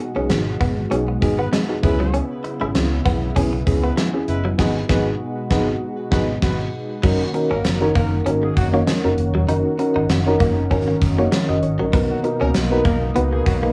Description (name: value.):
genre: 1980s-style pop.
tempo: 98 BPM.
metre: 4/4.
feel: swing 55% on 16ths.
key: unclear.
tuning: A4 = 440 Hz.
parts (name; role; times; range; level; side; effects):
FM electric piano with tremolo; accompaniment; 0.0-13.7 s; B3 to D#5; -24 LUFS; equal; cassette tape, plate reverb.
warm analog pad; sustained chords; 0.0-13.7 s; B2 to F#4; -30 LUFS; equal; chorus, cassette tape.
direct-recorded clean electric guitar; riff; 0.0-13.7 s; F#3 to E4; -28 LUFS; equal; analog chorus, cassette tape, tape echo.
vintage muted fingered electric bass; bass; 0.2-13.7 s; E1 to C#2; -25 LUFS; equal; none.
gated 80s drum kit; drums; 0.3-13.6 s; crash cymbal, hi-hat, kick drum, snare drum, tambourine; -24 LUFS; equal; cassette tape.
warm horn section; stabs; 1.4-13.6 s; F#3 to C#5; -34 LUFS; equal; cassette tape, tape echo, plate reverb.
room: moderate studio reverb, RT60 0.5 s.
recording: home recording on cassette, small room ambience.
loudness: -19 LUFS.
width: mono.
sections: 0.0-7.0 A section; 7.0-13.7 B section.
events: band accent 4.6-7.0.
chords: 0.0 G#m7; 1.8 C#m7; 4.6 G#m7; 7.0 F#6; 9.5 D#m7/F#; 11.9 Bmaj7.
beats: 0.30 0.91 1.53 | 2.14 2.75 3.36 3.98 | 4.59 5.20 5.81 6.42 | 7.04 7.65 8.26 8.87 | 9.48 10.10 10.71 11.32 | 11.93 12.55 13.16.